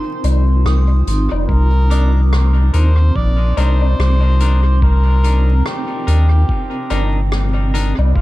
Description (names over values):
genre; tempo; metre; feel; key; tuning
ambient dub; 72 BPM; 4/4; swing 59% on 16ths; unclear; A4 = 439 Hz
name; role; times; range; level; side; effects
granular cloud pad; sustained chords; 0.0-8.2 s; C4 to Bb4; -25 LUFS; right 1 dB; built-in reverb
soft synth bell; arpeggios; 0.0-8.2 s; Eb4 to Eb6; -30 LUFS; right 2 dB; chorus, analog delay
warm sub bass; bass; 0.2-8.2 s; F1 to Eb2; -12 LUFS; equal; none
soft-mallet drum kit; drums; 0.2-8.1 s; hi-hat, rim click, woodblock; -28 LUFS; left 1 dB; dub echo
trumpet with cup mute; melody; 1.5-8.2 s; F4 to D5; -26 LUFS; equal; dub echo
electronic kick drum; drums; 1.5-8.2 s; none; -19 LUFS; equal; none
semi-hollow electric guitar; stabs; 1.9-7.9 s; D4 to Bb4; -27 LUFS; left 3 dB; dub echo
room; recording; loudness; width
small room ambience; echo-heavy mix, vinyl crackle; -12 LUFS; side -17 dB against mid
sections
0.0-1.5 A section; 1.5-8.2 B section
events
none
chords
0.0 Fm7; 1.5 Cm9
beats
0.65 | 1.49 2.32 3.15 3.99 | 4.82 5.65 6.49 7.32 | 8.15